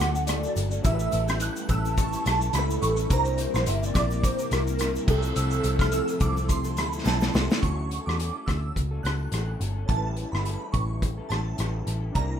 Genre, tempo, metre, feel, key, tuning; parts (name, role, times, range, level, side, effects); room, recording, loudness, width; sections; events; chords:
indie pop, bedroom pop; 106 BPM; 4/4; swing 55% on 16ths; D major; A4 = 440 Hz
warbly nostalgic lead; melody; 0.0-7.3 s; A4 to A5; -29 LUFS; right 1 dB; ensemble chorus, slapback echo
electric guitar through a small old amp; accompaniment; 0.0-12.4 s; A2 to Bb4; -36 LUFS; left 5 dB; analog chorus, vibrato effect
warm analog keys; accompaniment; 0.0-12.4 s; C#3 to B4; -39 LUFS; right 3 dB; chorus
string machine, full ensemble; sustained chords; 0.0-7.6 s; C3 to F#4; -35 LUFS; equal; ensemble chorus
vintage muted picked electric bass; bass; 0.0-12.4 s; G1 to E2; -27 LUFS; equal
loose indie drum kit; drums; 0.0-12.3 s; crash cymbal, hi-hat, kick drum, rim click, shaker, snare drum; -28 LUFS; equal
egg shaker; percussion; 0.0-7.6 s; -45 LUFS; left 10 dB
shimmering bell with halo; second line; 0.8-12.4 s; A5 to G6; -33 LUFS; right 5 dB; ensemble chorus, slapback echo
moderate studio reverb, RT60 0.5 s; rough home demo mix; -23 LUFS; side -9 dB against mid
0.0-7.6 A section; 7.6-12.4 B section
drum fill 7.1-7.6
0.0 Dmaj7; 0.8 A7; 3.1 C7; 5.1 Fmaj7/C; 7.6 Dmaj7; 9.9 A7